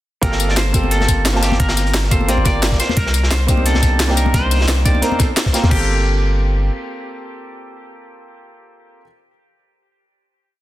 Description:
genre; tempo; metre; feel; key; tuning
liquid drum and bass; 175 BPM; 4/4; swing 53% on 16ths; G minor; A4 = 440 Hz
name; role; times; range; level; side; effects
clean electric guitar; melody; 0.2-9.0 s; G4 to D5; -24 LUFS; equal; spring reverb, tape echo
warm baby grand piano; accompaniment; 0.2-9.1 s; Bb3 to A5; -23 LUFS; right 2 dB; ping-pong delay
long sustained 808-style bass; bass; 0.2-6.7 s; G1 to Eb2; -17 LUFS; equal; none
crunchy breakbeat drum kit; drums; 0.2-5.7 s; hi-hat, snare drum; -25 LUFS; equal; high-pass filter on hats, small room reverb, high-pass filter on snare, high-pass filter on room
drum and bass drum kit; drums; 0.2-5.8 s; crash cymbal, hi-hat, snare drum, tambourine; -22 LUFS; left 1 dB; small room reverb
electronic kick drum; drums; 0.2-5.8 s; none; -17 LUFS; equal; small room reverb
congas; percussion; 0.8-5.7 s; none; -26 LUFS; left 4 dB; none
room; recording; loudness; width
studio reverb; dense, heavily limited modern master; -14 LUFS; side -15 dB against mid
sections
0.2-5.7 drop; 5.7-8.5 final chord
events
drop 0.2-5.7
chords
0.2 Gm11; 3.0 Cm9; 5.7 Gm11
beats
| 0.23 0.57 0.91 1.26 | 1.60 1.94 2.29 2.63 | 2.97 3.31 3.66 4.00 | 4.34 4.68 5.03 5.37 | 5.71 6.06 6.40 6.74 | 7.08 7.43 7.77 8.11

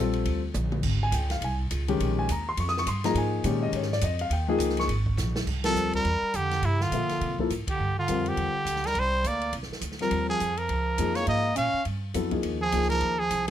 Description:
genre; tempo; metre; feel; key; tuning
modal jazz; 207 BPM; 4/4; swing 60% on 8ths; unclear; A4 = 439 Hz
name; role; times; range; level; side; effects
warm concert grand piano; accompaniment; 0.0-13.2 s; Eb3 to Eb6; -28 LUFS; left 4 dB; none
upright bass; bass; 0.0-13.5 s; Ab1 to C3; -29 LUFS; right 1 dB; none
open jazz drum kit; drums; 0.1-13.5 s; crash cymbal, hi-hat, kick drum, ride cymbal, snare drum, toms; -35 LUFS; equal; none
bright trumpet; melody; 5.7-13.5 s; E4 to F5; -27 LUFS; right 1 dB; none
mellow bass clarinet; second line; 5.7-13.5 s; C3 to Db4; -33 LUFS; right 4 dB; none
room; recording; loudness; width
light reverb; close, detailed microphones; -24 LUFS; side -11 dB against mid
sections
0.0-5.5 A section; 5.5-13.5 B section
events
drum fill 0.5, 5.2; band accent 5.6, 7.6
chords
0.0 C9sus4; 0.8 Eb9sus4; 5.5 C9sus4; 10.1 Eb9sus4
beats
0.26 0.55 | 0.84 1.13 1.42 1.71 | 2.00 2.29 2.58 2.87 | 3.15 3.44 3.73 4.02 | 4.31 4.60 4.89 5.18 | 5.47 5.76 6.05 6.34 | 6.63 6.92 7.21 7.50 | 7.79 8.08 8.37 8.66 | 8.95 9.24 9.54 9.82 | 10.12 10.41 10.70 10.99 | 11.28 11.57 11.86 12.15 | 12.44 12.73 13.02 13.31

